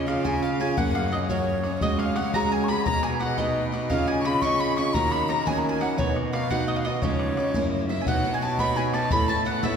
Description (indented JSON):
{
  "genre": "celtic folk, Celtic jig",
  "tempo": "115 BPM (dotted quarters)",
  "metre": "6/8",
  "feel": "straight",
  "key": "Db mixolydian",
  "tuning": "A4 = 441 Hz",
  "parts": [
    { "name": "baroque flute", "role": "melody", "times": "0.0-9.8 s", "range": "Db5 to Db6", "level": "-28 LUFS", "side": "left 1 dB", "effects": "none" },
    { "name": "bowl-back mandolin", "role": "second line", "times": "0.0-9.8 s", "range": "Db5 to Db6", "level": "-32 LUFS", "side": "right 2 dB", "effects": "none" },
    { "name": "dark fiddle", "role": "second line", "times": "0.0-9.8 s", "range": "Db5 to Db6", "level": "-33 LUFS", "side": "left 4 dB", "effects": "none" },
    { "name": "picked steel-string acoustic guitar", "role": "accompaniment", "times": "0.0-9.8 s", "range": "Db3 to Eb5", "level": "-28 LUFS", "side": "right 2 dB", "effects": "none" },
    { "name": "rich cello", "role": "bass", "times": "0.0-9.8 s", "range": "Db2 to Eb3", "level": "-28 LUFS", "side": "equal", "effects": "none" },
    { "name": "bodhran", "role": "percussion", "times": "0.1-9.7 s", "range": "none", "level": "-30 LUFS", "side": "left 1 dB", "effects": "none" }
  ],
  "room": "wet church reverb, RT60 3.8 s",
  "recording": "recorded in a church or concert hall",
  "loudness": "-22 LUFS",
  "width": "side -7 dB against mid",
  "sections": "0.0-8.1 A section; 8.1-9.8 B section",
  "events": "none",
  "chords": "0.0 Db; 0.8 Gb; 1.8 Dbsus4; 2.9 Cb; 3.9 Dbadd9; 4.9 Ebm7; 6.0 Cb; 7.0 Dbadd9; 7.6 Gb7; 8.1 Badd9; 9.1 Aadd9"
}